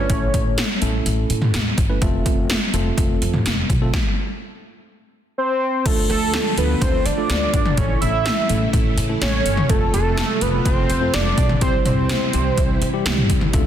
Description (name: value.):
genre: synth-pop.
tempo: 125 BPM.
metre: 4/4.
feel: straight.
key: unclear.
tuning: A4 = 439 Hz.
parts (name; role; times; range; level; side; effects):
fat analog lead; melody; 0.0-0.6, 5.4-13.3 s; A4 to E5; -22 LUFS; right 2 dB; chorus, phaser, ping-pong delay.
tine electric piano; accompaniment; 0.0-13.7 s; G3 to B4; -26 LUFS; equal; medium stereo tremolo.
upright bass; bass; 0.0-13.7 s; F1 to D3; -23 LUFS; equal; none.
80s electronic pad drums; drums; 0.1-13.6 s; crash cymbal, hi-hat, kick drum, snare drum, toms; -20 LUFS; equal; gated reverb on snare and toms.
string machine, full ensemble; sustained chords; 5.9-13.7 s; C3 to F4; -28 LUFS; equal; ensemble chorus.
room: light reverb.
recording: dense, heavily limited modern master.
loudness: -17 LUFS.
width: side -10 dB against mid.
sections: 0.0-5.9 A section; 5.9-13.7 B section.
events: stop 3.9-5.9.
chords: 0.1 A; 2.0 F; 3.9 N.C.; 5.9 Dm; 7.8 A; 9.7 F; 11.6 C.